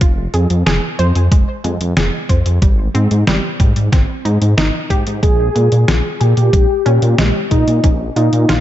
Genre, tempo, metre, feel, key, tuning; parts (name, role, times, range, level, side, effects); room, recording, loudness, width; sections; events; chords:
synthwave; 92 BPM; 4/4; straight; Bb dorian; A4 = 442 Hz
analog pluck; arpeggios; 0.0-8.6 s; G3 to C5; -23 LUFS; right 2 dB; chorus, tape echo
dark detuned saw bass; bass; 0.0-8.6 s; F1 to Bb2; -14 LUFS; equal; tube saturation, sidechain pumping
detuned 8-bit digital drum machine; drums; 0.0-8.6 s; hi-hat, snare drum; -19 LUFS; left 1 dB
electronic kick drum; drums; 0.0-8.0 s; -13 LUFS; equal
wide unison lead; melody; 5.2-8.5 s; Eb4 to Ab4; -16 LUFS; left 1 dB; ping-pong delay
light reverb, digital ambience; dark, warm production, nothing above 7.9 kHz; -12 LUFS; side -12 dB against mid
0.0-8.6 A section
0.0 Fm; 2.6 Abmaj7; 5.2 Bbm7